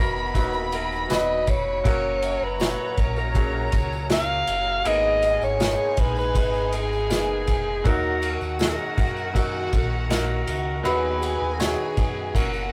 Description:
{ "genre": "pop ballad", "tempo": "80 BPM", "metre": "4/4", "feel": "straight", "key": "unclear", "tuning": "A4 = 440 Hz", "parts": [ { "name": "breathy alto saxophone", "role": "melody", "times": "0.0-12.7 s", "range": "F#4 to E#5", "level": "-28 LUFS", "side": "equal", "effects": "none" }, { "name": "warm studio violin section", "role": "second line", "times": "0.0-12.7 s", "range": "B3 to B5", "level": "-35 LUFS", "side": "equal", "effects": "none" }, { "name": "clear baby grand piano", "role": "accompaniment", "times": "0.0-12.7 s", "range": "G#2 to C#5", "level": "-32 LUFS", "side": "equal", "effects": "none" }, { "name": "sweeping resonant pad", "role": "sustained chords", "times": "0.0-12.7 s", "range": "B2 to A#5", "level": "-38 LUFS", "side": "equal", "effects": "chorus" }, { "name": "sub bass with octave", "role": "bass", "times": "0.0-12.7 s", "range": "D#1 to F#2", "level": "-33 LUFS", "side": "equal", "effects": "none" }, { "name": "unplugged drum kit", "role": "drums", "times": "0.3-12.5 s", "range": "kick drum, ride cymbal, snare drum", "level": "-28 LUFS", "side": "equal", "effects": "none" }, { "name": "tambourine", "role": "percussion", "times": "0.4-12.7 s", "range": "none", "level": "-48 LUFS", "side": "equal", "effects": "none" } ], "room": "moderate booth ambience, RT60 0.2 s", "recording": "rough rehearsal-room recording, warm saturation", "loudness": "-23 LUFS", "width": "mono", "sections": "0.0-12.7 A section", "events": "none", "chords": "0.0 B/D#; 1.9 F#; 4.9 G#madd9; 7.9 D#m; 10.9 B/D#", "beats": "0.35 1.10 | 1.85 2.60 3.35 4.10 | 4.85 5.60 6.35 7.10 | 7.85 8.60 9.35 10.10 | 10.85 11.60 12.35" }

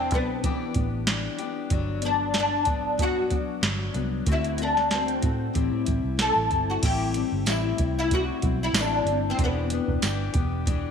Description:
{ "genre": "indie pop, bedroom pop", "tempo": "94 BPM", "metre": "4/4", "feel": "swing 55% on 16ths", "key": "A dorian", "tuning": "A4 = 440 Hz", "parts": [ { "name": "oud", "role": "melody", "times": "0.0-10.9 s", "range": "B3 to A4", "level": "-26 LUFS", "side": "left 1 dB", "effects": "ensemble chorus, slapback echo" }, { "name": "picked steel-string acoustic guitar", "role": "accompaniment", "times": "0.0-10.9 s", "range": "G2 to G4", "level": "-30 LUFS", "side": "left 9 dB", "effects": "wide subtle chorus, warbly pitch drift" }, { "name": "vintage muted fingered electric bass", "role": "bass", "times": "0.0-10.9 s", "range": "E1 to A2", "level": "-30 LUFS", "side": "right 2 dB", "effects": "none" }, { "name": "soft vintage rhythm box", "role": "drums", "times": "0.1-10.8 s", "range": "crash cymbal, hi-hat, kick drum, snare drum", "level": "-27 LUFS", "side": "right 1 dB", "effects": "none" }, { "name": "tambourine", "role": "percussion", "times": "7.5-10.2 s", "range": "none", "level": "-36 LUFS", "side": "right 14 dB", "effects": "none" } ], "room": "moderate echo chamber reverb, RT60 1.9 s, small room reverb", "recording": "1960s-style stereo with parts hard left and right", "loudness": "-23 LUFS", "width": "side -7 dB against mid", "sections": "0.0-6.8 A section; 6.8-10.9 B section", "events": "none", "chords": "0.0 Em7; 1.7 Gmaj7; 4.3 D7; 5.5 Am7; 9.4 Em7", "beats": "0.44 1.08 | 1.72 2.35 2.99 3.63 | 4.27 4.91 5.55 6.19 | 6.83 7.46 8.10 8.74 | 9.38 10.02 10.66" }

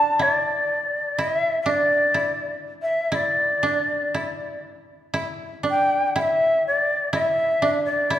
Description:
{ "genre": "japanese traditional, Japanese chamber music", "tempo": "61 BPM", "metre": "2/4", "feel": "rubato", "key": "unclear", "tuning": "A4 = 440 Hz", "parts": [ { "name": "shakuhachi", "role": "melody", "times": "0.0-8.2 s", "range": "D5 to A5", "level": "-20 LUFS", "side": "left 1 dB", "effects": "none" }, { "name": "koto", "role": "second line", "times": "0.0-8.2 s", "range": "D4 to E4", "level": "-26 LUFS", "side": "right 2 dB", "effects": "none" } ], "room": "moderate concert hall reverb, RT60 2.1 s", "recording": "recorded in a church or concert hall", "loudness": "-20 LUFS", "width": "side -11 dB against mid", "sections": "0.0-5.2 A section; 5.2-8.2 B section", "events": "none", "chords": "none", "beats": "0.23 | 1.20 2.15 | 3.13 4.15 | 5.15 6.14 | 7.12 8.07" }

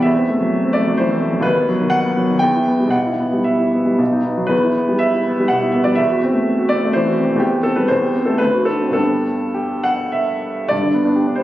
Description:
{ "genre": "classical, romantic character piece for solo piano", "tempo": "100-138 BPM", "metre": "3/4", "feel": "rubato", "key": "E minor, G major from 7.4 s", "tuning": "A4 = 440 Hz", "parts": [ { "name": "clear upright piano", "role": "solo", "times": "0.0-11.4 s", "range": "B1 to G5", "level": "-15 LUFS", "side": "equal", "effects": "none" } ], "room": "wet recital hall reverb, RT60 1.8 s", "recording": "recorded on a phone in the room, club reverb", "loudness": "-15 LUFS", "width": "side -14 dB against mid", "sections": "0.0-10.7 A section", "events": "none", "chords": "0.1 F#m7b5/E; 1.5 B/D#; 2.4 Em; 2.9 Em/B; 4.0 B; 4.5 Em; 6.0 F#m7b5/E; 7.4 C/E; 7.9 Am7/E; 8.4 D7; 9.0 G", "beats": "| 0.06 0.54 1.00 | 1.45 1.93 2.41 | 2.93 3.46 3.99 | 4.52 5.02 5.50 | 5.98 6.48 6.95 | 7.42 7.90 8.42 | 8.99 9.59 10.16 | 10.72 11.18" }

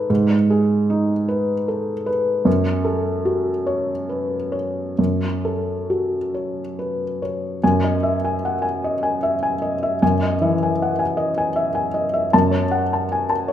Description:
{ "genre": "neoclassical minimalist piano", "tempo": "44-53 BPM (dotted quarters)", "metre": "6/8", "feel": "rubato", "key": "unclear", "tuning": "A4 = 440 Hz", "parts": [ { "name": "felt-muted upright piano", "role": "solo", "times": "0.0-13.5 s", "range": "F#2 to A5", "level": "-18 LUFS", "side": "equal", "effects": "none" } ], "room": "wet recital hall reverb, RT60 1.4 s", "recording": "minimal, uncompressed stereo recording", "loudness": "-18 LUFS", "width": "side -10 dB against mid", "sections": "0.0-7.6 A section; 7.6-13.5 B section", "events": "none", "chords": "0.0 G#m; 2.5 F#m; 7.6 Emaj7/F#; 12.3 F#m", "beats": "| 0.10 1.28 | 2.46 3.66 | 4.98 6.34 | 7.62 8.81 | 10.02 11.16 | 12.33 13.50" }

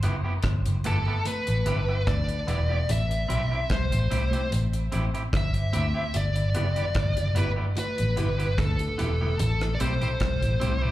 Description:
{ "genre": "roots reggae", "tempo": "74 BPM", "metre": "4/4", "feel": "straight", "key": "unclear", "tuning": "A4 = 440 Hz", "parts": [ { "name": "electric guitar at the edge of break-up", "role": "accompaniment", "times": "0.0-10.9 s", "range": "B3 to G4", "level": "-35 LUFS", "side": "right 2 dB", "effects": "tape echo, slapback echo" }, { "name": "vintage muted fingered electric bass", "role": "bass", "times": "0.0-10.8 s", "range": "E1 to D2", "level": "-25 LUFS", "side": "equal", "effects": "none" }, { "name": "deep reggae drum kit", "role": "drums", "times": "0.0-10.8 s", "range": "hi-hat, kick drum, rim click", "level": "-30 LUFS", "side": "equal", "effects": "none" }, { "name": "congas", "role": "percussion", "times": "0.0-10.8 s", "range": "none", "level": "-38 LUFS", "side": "right 3 dB", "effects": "slapback echo" }, { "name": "high-gain lead guitar", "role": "melody", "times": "0.9-10.9 s", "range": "A4 to E5", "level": "-30 LUFS", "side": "left 1 dB", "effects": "distortion, tape echo, slapback echo" }, { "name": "mellow tonewheel organ", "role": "accompaniment", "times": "6.4-10.9 s", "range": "G2 to G4", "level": "-34 LUFS", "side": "equal", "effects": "chorus vibrato, stopped rotary speaker, tape echo, slapback echo" } ], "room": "light reverb", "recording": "live gig heard through the venue's PA, club reverb", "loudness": "-23 LUFS", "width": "side -15 dB against mid", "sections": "0.0-10.9 A section", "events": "none", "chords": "0.0 G6; 2.9 Am7; 6.1 G6; 9.4 Am7", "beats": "0.45 1.26 2.07 | 2.89 3.70 4.51 5.33 | 6.14 6.96 7.77 8.58 | 9.39 10.21" }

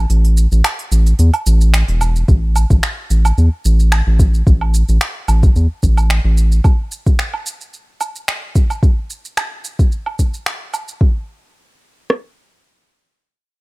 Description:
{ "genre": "organic downtempo", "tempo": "110 BPM", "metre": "4/4", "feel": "swing 54% on 16ths", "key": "unclear", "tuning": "A4 = 442 Hz", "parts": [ { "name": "round analog bass", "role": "bass", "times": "0.0-6.6 s", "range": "E1 to E2", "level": "-12 LUFS", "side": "equal", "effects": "sidechain pumping" }, { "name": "afro-pop drum kit", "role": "drums", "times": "0.1-11.0 s", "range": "finger snaps, hi-hat, shaker, woodblock", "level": "-21 LUFS", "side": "right 2 dB", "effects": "none" }, { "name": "organic electronic drum kit", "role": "drums", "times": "2.3-12.2 s", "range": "kick drum, rim click", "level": "-12 LUFS", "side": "equal", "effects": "overdrive" } ], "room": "little or no reverb", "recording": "none", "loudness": "-12 LUFS", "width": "side -23 dB against mid", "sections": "0.0-2.3 A section; 2.3-11.0 B section; 11.0-13.6 C section", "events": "kick drops out 0.1-2.3", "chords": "none", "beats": "| 0.10 0.64 1.19 1.74 | 2.28 2.83 3.37 3.92 | 4.46 5.01 5.55 6.10 | 6.64 7.19 7.74 8.28 | 8.83 9.37 9.92 10.46 | 11.01 11.55 12.10" }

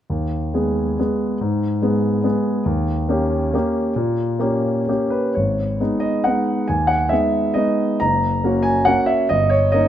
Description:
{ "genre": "classical, piano waltz", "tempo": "121-146 BPM", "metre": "3/4", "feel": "rubato", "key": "G# minor", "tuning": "A4 = 440 Hz", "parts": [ { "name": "warm concert grand piano", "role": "solo", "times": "0.1-9.9 s", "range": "F#1 to A#5", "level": "-17 LUFS", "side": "equal", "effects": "none" } ], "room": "light reverb", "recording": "close, detailed microphones", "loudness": "-17 LUFS", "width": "side -10 dB against mid", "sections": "0.1-5.4 A section; 5.4-9.9 B section", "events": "none", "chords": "0.1 G#m/D#; 2.7 D#7; 5.4 G#m; 8.0 F#; 9.3 D#7/G", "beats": "| 0.08 0.54 0.98 | 1.41 1.82 2.24 | 2.67 3.09 3.54 | 3.96 4.41 4.88 | 5.36 5.80 6.25 | 6.69 7.11 7.55 | 8.02 8.44 8.88 | 9.31 9.73" }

